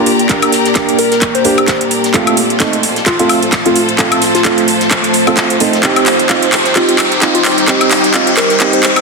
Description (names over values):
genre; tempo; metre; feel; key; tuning
bass house; 130 BPM; 4/4; swing 57% on 16ths; unclear; A4 = 440 Hz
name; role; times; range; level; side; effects
soft struck synth lead; melody; 0.0-9.0 s; F4 to C5; -17 LUFS; left 2 dB; chorus, tape echo
deep dark ambient pad; sustained chords; 0.0-9.0 s; G3 to D5; -17 LUFS; equal; chorus, built-in reverb, sidechain pumping
warm concert grand piano; stabs; 0.0-8.8 s; A3 to G4; -16 LUFS; right 5 dB; sidechain pumping, tape echo
riser; sound effects; 1.3-9.0 s; none; -22 LUFS; left 1 dB; none
bright symphonic string section; texture; 0.0-9.0 s; Eb4 to Bb5; -19 LUFS; left 2 dB; sidechain pumping
damped 70s drum kit; drums; 0.1-9.0 s; ride cymbal, snare drum; -24 LUFS; right 2 dB; none
house drum kit; drums; 0.1-9.0 s; handclaps, hi-hat, woodblock; -13 LUFS; equal; soft clipping on snare
electronic kick drum; drums; 0.3-8.7 s; none; -19 LUFS; left 1 dB; high-pass filter on kick, high-pass filter on room
room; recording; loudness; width
wet plate reverb, RT60 1.6 s; dense, heavily limited modern master, high-pass filter; -9 LUFS; side -3 dB against mid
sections
0.0-9.0 A section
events
build-up 0.0-9.0; drum fill 0.0-9.0; riser 1.3-9.0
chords
0.0 Gm; 2.1 F; 5.8 Cm